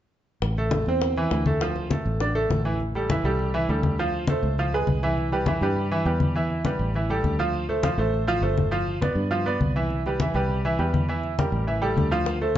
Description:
latin, salsa; 203 BPM; 4/4; straight; A minor; A4 = 439 Hz
fingered electric bass; bass; 0.4-12.6 s; G1 to G2; -27 LUFS; equal
bongos; percussion; 0.4-2.8, 12.3-12.4 s; -34 LUFS; left 7 dB
congas; percussion; 0.4-12.6 s; -28 LUFS; left 2 dB
bright concert grand piano; accompaniment; 0.6-12.5 s; E3 to F5; -25 LUFS; right 2 dB
moderate large studio reverb, RT60 1.3 s; dark, warm production, nothing above 7.8 kHz; -22 LUFS; side -11 dB against mid
0.4-2.8 A section; 2.8-12.6 B section
0.4 Am; 1.6 Dm; 2.8 Am7; 4.0 Dm7; 4.6 C#7; 5.2 Cmaj7; 6.4 Em; 6.9 A5; 7.5 Dm7; 8.7 G7; 9.9 Cmaj7; 11.1 Edim; 11.7 A5

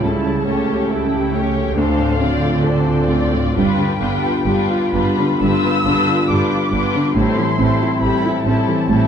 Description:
classical, romantic movement for piano and orchestra; 60-71 BPM; 4/4; rubato; A4 = 439 Hz
muted studio violin section; melody; 0.0-9.1 s; D5 to E6; -24 LUFS; left 3 dB
warm baby grand piano; melody; 0.0-9.1 s; C#2 to A4; -18 LUFS; left 1 dB
muted studio violin section; second line; 0.0-9.1 s; E4 to D5; -24 LUFS; left 3 dB
muted studio viola section; accompaniment; 0.0-9.1 s; G3 to E4; -24 LUFS; right 1 dB
muted studio cello section; bass; 0.0-9.0 s; G2 to D3; -24 LUFS; right 4 dB
muted studio double bass section; bass; 0.0-9.0 s; G1 to D2; -24 LUFS; right 4 dB
moderate recital hall reverb, RT60 1.4 s; dark, warm production, faint mains hum; -15 LUFS; side -8 dB against mid
0.0-9.1 A section
0.0 A7/C#; 1.8 Dm7; 3.6 G7; 7.2 Am7

